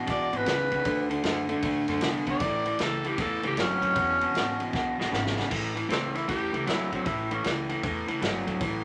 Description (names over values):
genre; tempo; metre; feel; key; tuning
electric blues shuffle; 155 BPM; 4/4; swing 65% on 8ths; A mixolydian; A4 = 440 Hz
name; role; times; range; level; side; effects
electric guitar through a small old amp; riff; 0.0-8.8 s; E2 to B3; -31 LUFS; equal; none
growling tenor saxophone; melody; 0.1-7.5 s; C4 to D5; -31 LUFS; equal; none
upright bass; bass; 0.1-8.8 s; E1 to A2; -41 LUFS; equal; none
natural country drum kit; drums; 0.1-8.7 s; crash cymbal, kick drum, ride cymbal, snare drum; -34 LUFS; equal; none
room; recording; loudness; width
moderate large studio reverb, RT60 1.1 s; none; -28 LUFS; mono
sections
0.0-5.5 A section; 5.5-8.8 B section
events
tenor saxophone solo 0.0-5.5; drum fill 4.7-5.5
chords
0.0 E6; 0.9 D6; 2.4 A6; 4.0 E6; 5.5 A6